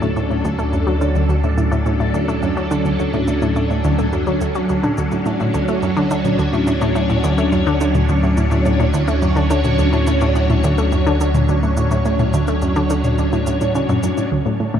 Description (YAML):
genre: ambient, sequencer-driven space music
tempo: 106 BPM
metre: 4/4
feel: straight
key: D major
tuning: A4 = 440 Hz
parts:
  - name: phased string machine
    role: sustained chords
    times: 0.0-14.8 s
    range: F#3 to C#5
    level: -19 LUFS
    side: equal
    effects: ensemble chorus, phaser
  - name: analog pluck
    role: riff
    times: 0.0-14.8 s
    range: D2 to A3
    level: -19 LUFS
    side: equal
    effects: chorus, analog delay
  - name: round analog bass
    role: bass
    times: 0.0-14.8 s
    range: D2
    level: -21 LUFS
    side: equal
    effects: none
  - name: electronic shaker and toms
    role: percussion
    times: 0.0-14.3 s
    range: none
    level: -27 LUFS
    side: equal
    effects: overdrive, analog delay
room: wet huge ambient reverb, RT60 7.5 s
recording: dark, warm production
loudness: -15 LUFS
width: side -9 dB against mid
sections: 0.0-14.3 A section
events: fade-in on drum 0.0-14.3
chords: 0.0 Dmaj7